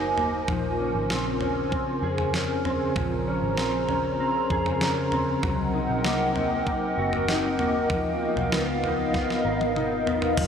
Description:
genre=dream pop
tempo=97 BPM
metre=4/4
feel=straight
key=Bb minor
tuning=A4 = 444 Hz
part: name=warbly tape-like pad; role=sustained chords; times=0.0-10.5 s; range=Db3 to Bb5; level=-26 LUFS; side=equal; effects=chorus, built-in reverb
part: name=mellow electric guitar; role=arpeggios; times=0.0-10.5 s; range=F3 to Bb4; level=-28 LUFS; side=left 2 dB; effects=ensemble chorus, tape echo
part: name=vintage muted picked electric bass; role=bass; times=0.0-10.5 s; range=Gb1 to F2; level=-33 LUFS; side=equal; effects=none
part: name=crisp 8-bit digital drum machine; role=drums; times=0.2-10.5 s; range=crash cymbal, kick drum, snare drum, toms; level=-31 LUFS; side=right 1 dB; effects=none
room=wet huge ambient reverb, RT60 8.4 s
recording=dreamy mix soaked in reverb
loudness=-23 LUFS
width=side -7 dB against mid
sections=0.0-10.4 A section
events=drum fill 9.1-10.4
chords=0.5 Bbm9; 5.4 Cm7b5; 7.9 Db13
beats=| 0.48 1.10 1.72 2.34 | 2.96 3.58 4.20 4.81 | 5.43 6.05 6.67 7.29 | 7.91 8.53 9.14 9.76 | 10.38

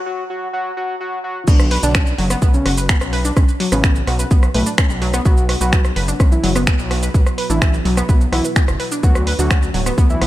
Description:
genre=melodic techno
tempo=127 BPM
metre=4/4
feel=straight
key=B minor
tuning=A4 = 440 Hz
part: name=fat analog lead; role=melody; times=0.1-10.3 s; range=A3 to F#4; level=-24 LUFS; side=equal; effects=cassette tape, sidechain pumping, ping-pong delay
part: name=analog pluck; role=arpeggios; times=1.5-10.3 s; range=F#3 to B4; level=-23 LUFS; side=equal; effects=chorus, sidechain pumping, digital delay
part: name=gritty driven synth bass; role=bass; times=1.5-10.3 s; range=D1 to D2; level=-20 LUFS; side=equal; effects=tube saturation, sidechain pumping, high-pass filter
part: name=bowed-like drone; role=drone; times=3.5-10.3 s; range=B2 to F#3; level=-32 LUFS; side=equal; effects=none
part: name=electronic kick drum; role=drums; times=1.5-10.1 s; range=none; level=-14 LUFS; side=equal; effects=none
part: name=punchy analog drum machine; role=drums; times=1.5-10.3 s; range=crash cymbal, finger snaps, hi-hat, rim click, shaker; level=-22 LUFS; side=right 1 dB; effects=sidechain pumping on perc, sidechain pumping on hats, sidechain pumping on cymbals
room=light reverb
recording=bright 1980s-style digital production, high-pass filter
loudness=-14 LUFS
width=side -15 dB against mid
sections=0.0-1.5 A section; 1.5-10.3 B section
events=break 0.0-1.5; build-up 0.0-1.5; drop 1.5-10.3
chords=0.0 N.C.; 1.5 Bm; 9.0 D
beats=0.06 0.53 1.00 | 1.48 1.95 2.42 2.89 | 3.37 3.84 4.31 4.78 | 5.25 5.73 6.20 6.67 | 7.14 7.62 8.09 8.56 | 9.03 9.51 9.98

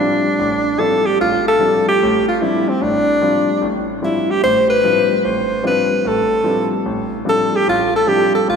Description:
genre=jazz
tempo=148 BPM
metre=4/4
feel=swing 66% on 8ths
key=D dorian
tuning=A4 = 440 Hz
part: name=clear alto saxophone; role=melody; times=0.0-8.6 s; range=C4 to C5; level=-15 LUFS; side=equal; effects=none
part: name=clear concert grand piano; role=accompaniment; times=0.0-8.6 s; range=A1 to E4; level=-20 LUFS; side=left 2 dB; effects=none
room=wet church reverb, RT60 3.1 s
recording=recorded in a church or concert hall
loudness=-14 LUFS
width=side -6 dB against mid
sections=0.0-8.6 A section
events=none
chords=0.0 Dm11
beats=0.38 0.78 | 1.19 1.59 1.99 2.40 | 2.80 3.21 3.61 4.01 | 4.42 4.82 5.23 5.63 | 6.04 6.44 6.84 7.25 | 7.65 8.05 8.46

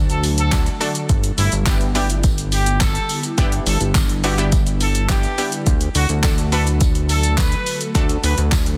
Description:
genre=dance-pop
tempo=105 BPM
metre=4/4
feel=straight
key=G major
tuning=A4 = 443 Hz
part: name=analog pluck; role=accompaniment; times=0.0-8.6 s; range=A3 to B4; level=-28 LUFS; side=equal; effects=chorus, sidechain pumping
part: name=ethereal airy pad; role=sustained chords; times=0.1-8.8 s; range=D3 to A4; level=-32 LUFS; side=equal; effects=none
part: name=fat analog bass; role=bass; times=0.0-8.8 s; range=G1 to D2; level=-22 LUFS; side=equal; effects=sidechain pumping
part: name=warm horn section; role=melody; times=0.1-8.4 s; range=E4 to B4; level=-28 LUFS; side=equal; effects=sidechain pumping, tape echo
part: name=deep house drum kit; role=drums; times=0.1-8.8 s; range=handclaps, hi-hat, kick drum, shaker, snare drum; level=-21 LUFS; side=equal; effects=none
part: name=tambourine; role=percussion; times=0.2-8.7 s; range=none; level=-36 LUFS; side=equal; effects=none
room=little or no reverb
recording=dense, heavily limited modern master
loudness=-18 LUFS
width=mono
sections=0.0-8.8 A section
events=none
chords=0.0 D; 1.1 G6; 5.7 D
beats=0.52 | 1.09 1.67 2.24 2.81 | 3.38 3.95 4.52 5.09 | 5.67 6.24 6.81 7.38 | 7.95 8.52

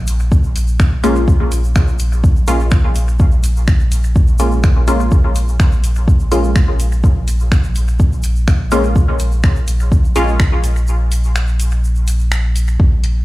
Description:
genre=dub techno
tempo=125 BPM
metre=4/4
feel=straight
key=Bb minor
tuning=A4 = 440 Hz
part: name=round analog bass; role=bass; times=0.0-13.2 s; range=Bb1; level=-16 LUFS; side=equal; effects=sidechain pumping
part: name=deep house drum kit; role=drums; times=0.1-13.1 s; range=finger snaps, hi-hat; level=-25 LUFS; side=equal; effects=dub echo
part: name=egg shaker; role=percussion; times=0.1-12.8 s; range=none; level=-33 LUFS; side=right 2 dB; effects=none
part: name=electronic kick drum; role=drums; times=0.3-12.9 s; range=none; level=-12 LUFS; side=equal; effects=none
part: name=filtered dub chord stab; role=stabs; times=1.0-10.3 s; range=Ab3 to F4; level=-19 LUFS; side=equal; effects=chorus, phaser, sidechain pumping, dub echo
room=little or no reverb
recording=played on a big sound system in a bare room, stone room reverb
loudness=-12 LUFS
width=side -18 dB against mid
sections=0.0-12.8 A section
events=kick drops out 10.9-12.8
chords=0.0 Bbm7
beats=0.32 0.80 | 1.28 1.76 2.24 2.72 | 3.20 3.68 4.16 4.64 | 5.12 5.60 6.08 6.56 | 7.04 7.52 8.00 8.48 | 8.96 9.44 9.92 10.40 | 10.88 11.36 11.84 12.32 | 12.80

